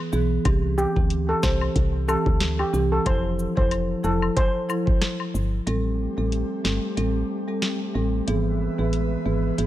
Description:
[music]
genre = dancehall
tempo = 92 BPM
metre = 4/4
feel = swing 56% on 16ths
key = A minor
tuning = A4 = 444 Hz
[part]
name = marimba with medium mallets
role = accompaniment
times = 0.1-9.7 s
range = E3 to A4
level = -26 LUFS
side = right 1 dB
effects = none
[part]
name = woody FM bass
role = bass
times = 0.1-9.7 s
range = F1 to D2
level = -25 LUFS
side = equal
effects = none
[part]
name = cabasa and woodblock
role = percussion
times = 0.1-5.5 s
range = none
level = -35 LUFS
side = left 7 dB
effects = none
[part]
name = island pop drum kit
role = drums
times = 0.5-9.7 s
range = hi-hat, kick drum, rim click, snare drum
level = -24 LUFS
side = equal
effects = none
[part]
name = steel pan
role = melody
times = 0.8-4.8 s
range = G4 to C5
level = -27 LUFS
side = equal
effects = tape echo
[part]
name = airy breathy pad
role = sustained chords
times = 5.7-9.7 s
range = G#3 to E5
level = -32 LUFS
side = equal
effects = chorus, sidechain pumping
[sound]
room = little or no reverb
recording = none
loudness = -21 LUFS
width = side -14 dB against mid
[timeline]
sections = 0.0-5.7 A section; 5.7-9.7 B section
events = kick muted 5.7-9.7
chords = 0.5 C; 3.1 Fmaj7; 5.7 Am7; 8.3 E/G#

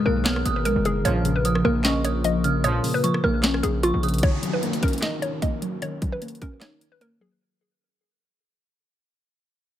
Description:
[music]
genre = hip hop, trap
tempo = 151 BPM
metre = 4/4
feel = half-time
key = Eb minor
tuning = A4 = 440 Hz
[part]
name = hollow square pluck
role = melody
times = 0.0-7.4 s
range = F4 to Eb5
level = -27 LUFS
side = equal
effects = chorus, digital delay
[part]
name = dark detuned synth bell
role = second line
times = 0.0-4.2 s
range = Db6 to Gb6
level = -31 LUFS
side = right 4 dB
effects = chorus, phaser, digital delay
[part]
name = warbly dusty pluck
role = accompaniment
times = 0.0-7.4 s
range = Ab2 to Eb4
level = -26 LUFS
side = left 2 dB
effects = chorus
[part]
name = dark analog pad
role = sustained chords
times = 0.0-7.4 s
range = Cb3 to Bb4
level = -32 LUFS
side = equal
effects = chorus
[part]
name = distorted 808-style bass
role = bass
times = 0.1-4.2 s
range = Gb1 to Cb2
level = -25 LUFS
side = equal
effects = distortion
[part]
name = trap drum kit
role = drums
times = 0.3-7.1 s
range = handclaps, hi-hat, kick drum, rim click, snare drum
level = -25 LUFS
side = equal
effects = overdrive
[part]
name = warm brass ensemble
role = stabs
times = 1.1-2.9 s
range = Db2 to F3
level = -29 LUFS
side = right 3 dB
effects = none
[part]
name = downlifter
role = sound effects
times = 4.2-7.4 s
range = none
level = -34 LUFS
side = equal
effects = none
[sound]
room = little or no reverb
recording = none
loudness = -20 LUFS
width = side -12 dB against mid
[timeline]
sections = 0.0-4.2 A section; 4.2-7.4 B section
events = fade-out 4.2-7.4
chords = 0.0 Abmadd9; 1.1 Bbm; 4.2 Ebm7

